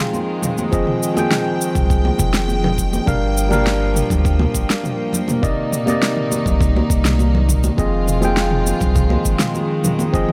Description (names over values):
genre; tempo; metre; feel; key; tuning
sunset chillout; 102 BPM; 4/4; straight; F dorian; A4 = 440 Hz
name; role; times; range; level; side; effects
overdriven tine electric piano; accompaniment; 0.0-10.3 s; C3 to G5; -23 LUFS; equal; tape echo
rich studio string section; sustained chords; 0.0-10.3 s; Eb3 to G5; -27 LUFS; equal; none
deep house drum kit; drums; 0.1-10.3 s; shaker, snare drum, toms; -25 LUFS; equal; none
congas; percussion; 0.1-10.1 s; none; -28 LUFS; equal; none
electronic kick drum; drums; 0.7-10.3 s; none; -23 LUFS; equal; overdrive
warm sub bass; bass; 1.8-9.4 s; F1 to D2; -21 LUFS; equal; none
room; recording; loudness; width
little or no reverb; none; -18 LUFS; mono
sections
0.0-10.3 A section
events
none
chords
0.0 Fm7; 3.1 Gm7; 5.4 Cm9; 7.8 Fm7